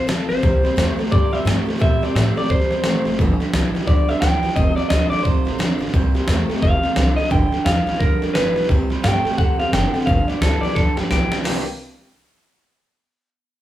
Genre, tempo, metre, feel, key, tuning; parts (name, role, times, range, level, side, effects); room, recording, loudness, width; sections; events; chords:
rockabilly; 174 BPM; 4/4; swing 61% on 8ths; A4 = 440 Hz
electric guitar through a small old amp; melody; 0.0-11.6 s; G4 to G5; -22 LUFS; equal
picked steel-string acoustic guitar; accompaniment; 0.0-11.6 s; F2 to D5; -26 LUFS; left 2 dB
upright bass; bass; 0.0-11.6 s; F1 to Bb2; -22 LUFS; equal
trip hop sampler-style drum kit; drums; 0.1-11.5 s; hi-hat, kick drum, snare drum; -20 LUFS; equal
electric guitar through a small old amp; riff; 0.4-11.6 s; F2 to D4; -24 LUFS; right 3 dB
moderate large studio reverb, RT60 0.8 s; band playing live in one room; -16 LUFS; side -13 dB against mid
0.0-8.7 A section; 8.7-11.4 B section; 11.4-12.8 C section
drum fill 10.8-11.4
0.4 C7; 3.2 G7; 4.6 F7; 5.9 C7; 6.6 F7; 7.3 G7; 8.7 C7; 9.4 F7; 10.1 G7; 11.4 C9